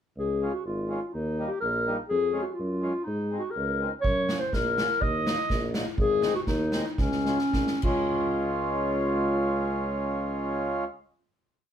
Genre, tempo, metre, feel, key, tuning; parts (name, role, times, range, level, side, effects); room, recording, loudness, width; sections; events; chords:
alpine folk, alpine dance band; 93-125 BPM; 2/4; straight; Db major; A4 = 440 Hz
dark clarinet; melody; 0.2-10.8 s; Db4 to Eb5; -28 LUFS; left 2 dB
mellow tuba; bass; 0.2-10.8 s; Ab1 to Ab2; -31 LUFS; right 1 dB
mellow accordion; accompaniment; 0.4-10.8 s; Gb3 to F4; -30 LUFS; right 1 dB
street-band drum kit; drums; 4.0-8.0 s; crash cymbal, kick drum, snare drum; -30 LUFS; equal
wet small room reverb, RT60 0.5 s; heard from further back in the room; -25 LUFS; side -9 dB against mid
0.2-8.2 A section; 8.2-10.7 final hit
slowing down 6.0-8.2; drum fill 7.0-8.2
0.2 Db; 1.1 Eb; 2.1 Db/F; 3.1 Ab; 4.0 Gb; 5.0 Ebm; 6.0 Ab; 7.0 Db